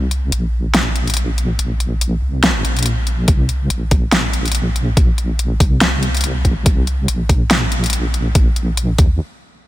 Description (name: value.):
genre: deep dubstep.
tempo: 142 BPM.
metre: 4/4.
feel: swing 56% on 16ths, half-time.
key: unclear.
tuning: A4 = 440 Hz.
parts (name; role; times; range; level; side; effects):
deep soft wobble bass; bass; 0.0-9.2 s; Bb1 to Eb2; -18 LUFS; equal; chorus.
dubstep drum kit; drums; 0.1-9.1 s; hi-hat, snare drum; -18 LUFS; equal; overdrive.
electronic kick drum; drums; 3.3-9.1 s; none; -13 LUFS; equal; overdrive.
room: digital ambience.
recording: none.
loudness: -14 LUFS.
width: side -16 dB against mid.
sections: 0.0-9.7 A section.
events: build-up 0.0-9.7; stop 9.2-9.7.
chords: none.